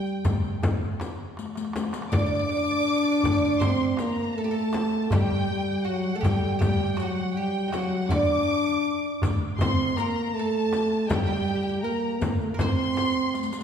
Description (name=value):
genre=Arabic maqam ensemble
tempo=80 BPM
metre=4/4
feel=straight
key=unclear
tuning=A4 = 440 Hz
part: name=dark French horn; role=melody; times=0.0-13.6 s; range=F#3 to D4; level=-26 LUFS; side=equal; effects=none
part: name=oud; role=second line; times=0.0-13.6 s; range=Eb4 to D5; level=-32 LUFS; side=right 4 dB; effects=none
part: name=rich studio violin section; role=second line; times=0.0-13.6 s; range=F#5 to D6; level=-31 LUFS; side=left 1 dB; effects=none
part: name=riq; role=percussion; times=0.1-13.6 s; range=none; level=-36 LUFS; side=left 4 dB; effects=none
part: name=darbuka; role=percussion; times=0.2-13.6 s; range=none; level=-30 LUFS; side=equal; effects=none
part: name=frame drum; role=percussion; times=0.2-13.1 s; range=none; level=-30 LUFS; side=left 2 dB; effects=none
room=wet concert hall reverb, RT60 1.8 s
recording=recorded in a church or concert hall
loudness=-23 LUFS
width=side -8 dB against mid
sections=0.0-13.6 A section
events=drum fill 1.4-2.1, 13.3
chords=none